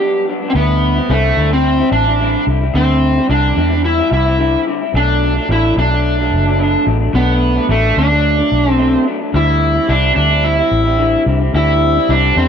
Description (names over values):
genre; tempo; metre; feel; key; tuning
indie pop; 109 BPM; 4/4; swing 55% on 16ths; unclear; A4 = 440 Hz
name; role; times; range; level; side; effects
overdriven slide guitar; melody; 0.0-12.5 s; A3 to G4; -15 LUFS; right 1 dB; wide subtle chorus, slapback echo
electric guitar through a small old amp; accompaniment; 0.0-12.5 s; G2 to E4; -19 LUFS; left 5 dB; lush chorus, vibrato effect
mellow French horn section; sustained chords; 0.0-0.5, 9.3-12.5 s; G3 to E5; -24 LUFS; left 1 dB; none
vintage muted fingered electric bass; bass; 0.5-12.5 s; F#1 to E2; -16 LUFS; equal; none
room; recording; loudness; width
little or no reverb; none; -12 LUFS; side -7 dB against mid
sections
0.5-12.5 A section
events
break 0.0-0.5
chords
0.0 Gmaj7; 0.5 D9sus4; 4.9 Bm7; 9.3 D9sus4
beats
0.00 | 0.55 1.10 1.65 2.19 | 2.74 3.29 3.84 4.39 | 4.94 5.49 6.04 6.59 | 7.14 7.69 8.24 8.79 | 9.34 9.89 10.44 10.99 | 11.54 12.09